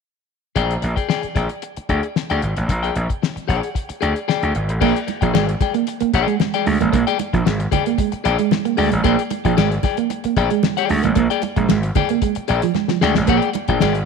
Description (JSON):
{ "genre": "funk", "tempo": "113 BPM", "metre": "4/4", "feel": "straight", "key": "Bb mixolydian", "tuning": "A4 = 440 Hz", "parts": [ { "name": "clean electric guitar", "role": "accompaniment", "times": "0.6-14.0 s", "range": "Ab4 to G5", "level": "-22 LUFS", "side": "left 10 dB", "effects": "none" }, { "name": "gritty slap bass", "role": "bass", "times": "0.6-14.0 s", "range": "Ab1 to D2", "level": "-20 LUFS", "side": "equal", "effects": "overdrive" }, { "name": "cloth-damped thuddy drum kit", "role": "drums", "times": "0.6-14.1 s", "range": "crash cymbal, hi-hat, kick drum, snare drum", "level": "-22 LUFS", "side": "left 4 dB", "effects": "none" }, { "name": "clean electric guitar", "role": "riff", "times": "4.8-14.0 s", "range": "F3 to Bb3", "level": "-21 LUFS", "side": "right 14 dB", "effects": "none" }, { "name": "congas", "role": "percussion", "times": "4.8-13.9 s", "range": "none", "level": "-25 LUFS", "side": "right 13 dB", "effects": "none" } ], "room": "moderate echo chamber reverb, RT60 1.7 s, small room ambience", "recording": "1960s-style stereo with parts hard left and right", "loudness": "-16 LUFS", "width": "side -5 dB against mid", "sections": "0.6-4.8 A section; 4.8-14.1 B section", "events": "drum fill 12.8-13.3", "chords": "0.6 Bb6" }